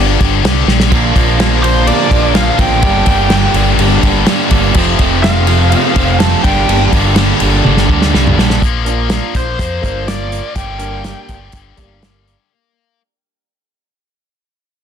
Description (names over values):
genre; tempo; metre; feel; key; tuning
quiet-loud alternative rock; 125 BPM; 4/4; straight; G minor; A4 = 439 Hz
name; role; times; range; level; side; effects
nasal lead guitar with a parked wah; melody; 0.0-12.0 s; C5 to A5; -19 LUFS; right 1 dB; overdrive, analog delay
heavy high-gain guitar; riff; 0.0-13.0 s; F2 to Bb3; -18 LUFS; left 15 dB; distortion
sludgy distorted guitar; riff; 0.0-8.4 s; F2 to Bb3; -19 LUFS; equal; overdrive
overdriven fingered electric bass; bass; 0.0-12.3 s; F1 to F2; -15 LUFS; equal; none
loose indie drum kit; drums; 0.2-12.4 s; crash cymbal, hi-hat, kick drum, ride cymbal, snare drum, toms; -14 LUFS; equal; none
overdriven electric guitar; riff; 0.9-8.6 s; F2 to D4; -17 LUFS; right 12 dB; none
electric guitar through a small old amp; arpeggios; 8.8-12.3 s; F3 to Bb4; -26 LUFS; right 2 dB; analog chorus
room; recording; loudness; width
light reverb; dense, heavily limited modern master; -9 LUFS; side -8 dB against mid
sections
0.0-8.6 A section; 8.6-12.5 B section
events
drum fill 0.7, 7.6-8.6; fade-out 8.6-12.5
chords
0.0 Gm; 0.9 Bb; 2.8 Gm; 4.8 F; 6.4 Gm; 8.6 Bb; 10.6 Gm